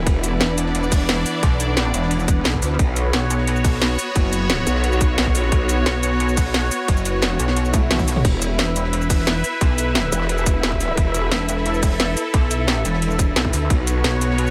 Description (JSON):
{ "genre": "dark technical drum and bass", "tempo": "176 BPM", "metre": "4/4", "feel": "straight", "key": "unclear", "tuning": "A4 = 440 Hz", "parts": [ { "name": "sweeping resonant pad", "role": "sustained chords", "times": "0.0-14.5 s", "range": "E3 to E5", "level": "-28 LUFS", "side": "equal", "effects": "chorus, sidechain pumping" }, { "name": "growl bass", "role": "bass", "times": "0.0-0.4, 2.8-5.8, 8.2-11.3, 13.7-14.0 s", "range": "E1 to B1", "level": "-23 LUFS", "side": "equal", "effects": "chorus, overdrive" }, { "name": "bright studio string section", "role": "texture", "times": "0.0-14.5 s", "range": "B3 to E5", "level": "-30 LUFS", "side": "equal", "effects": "sidechain pumping" }, { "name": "crunchy breakbeat drum kit", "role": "drums", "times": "0.1-14.5 s", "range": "hi-hat, ride cymbal, snare drum", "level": "-35 LUFS", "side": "equal", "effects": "high-pass filter on cymbals, high-pass filter on hats, high-pass filter on snare, high-pass filter on room" }, { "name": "drum and bass drum kit", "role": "drums", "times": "0.1-14.5 s", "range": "crash cymbal, hi-hat, shaker, snare drum, toms", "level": "-25 LUFS", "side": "equal", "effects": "none" }, { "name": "electronic kick drum", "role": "drums", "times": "0.1-13.8 s", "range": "none", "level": "-21 LUFS", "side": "equal", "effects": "overdrive" }, { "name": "pulsing pluck wobble bass", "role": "bass", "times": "0.4-14.5 s", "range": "E1 to D2", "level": "-24 LUFS", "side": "equal", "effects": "chorus" }, { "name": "swell", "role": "sound effects", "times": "7.7-8.2 s", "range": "none", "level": "-35 LUFS", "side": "equal", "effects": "none" } ], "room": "light reverb", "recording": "none", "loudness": "-19 LUFS", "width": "mono", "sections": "0.0-14.5 A section", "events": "swell 7.7-8.2; drum fill 7.7-8.2", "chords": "0.0 E5; 2.8 Bsus2; 8.2 E5; 13.7 Bsus2", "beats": "| 0.07 0.41 0.75 1.09 | 1.43 1.77 2.11 2.45 | 2.79 3.13 3.47 3.81 | 4.16 4.50 4.84 5.18 | 5.52 5.86 6.20 6.54 | 6.88 7.22 7.57 7.91 | 8.25 8.59 8.93 9.27 | 9.61 9.95 10.29 10.63 | 10.97 11.31 11.66 12.00 | 12.34 12.68 13.02 13.36 | 13.70 14.04 14.38" }